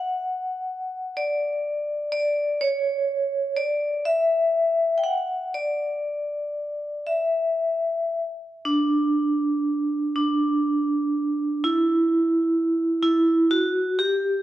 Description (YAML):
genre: celtic folk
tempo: 40 BPM (dotted quarters)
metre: 6/8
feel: uneven beats, rubato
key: unclear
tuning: A4 = 441 Hz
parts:
  - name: vibraphone with hard mallets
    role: solo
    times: 0.0-14.4 s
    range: D4 to G5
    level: -21 LUFS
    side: equal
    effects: none
room: moderate scoring stage reverb, RT60 1.7 s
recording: worn, warbling old tape, cassette tape, warbly pitch drift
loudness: -21 LUFS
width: side -13 dB against mid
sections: 0.0-8.6 A section; 8.6-14.4 B section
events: none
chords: none